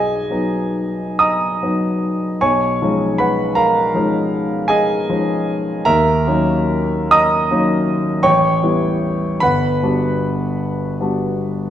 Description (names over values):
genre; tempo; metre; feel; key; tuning
classical, impressionist solo piano; 44-54 BPM (dotted quarters); 9/8; rubato; unclear; A4 = 438 Hz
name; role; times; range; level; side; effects
warm grand piano; solo; 0.0-11.7 s; G1 to D#6; -15 LUFS; equal; none
room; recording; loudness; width
wet recital hall reverb, RT60 1.6 s; dark, warm production; -15 LUFS; side -10 dB against mid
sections
0.0-11.7 A section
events
none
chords
0.0 B6; 2.4 C#add9/B; 5.9 D#m7; 8.2 A9; 9.4 Gmaj7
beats
1.21 | 2.42 3.58 4.70 | 5.86 7.11 8.24 | 9.42 10.62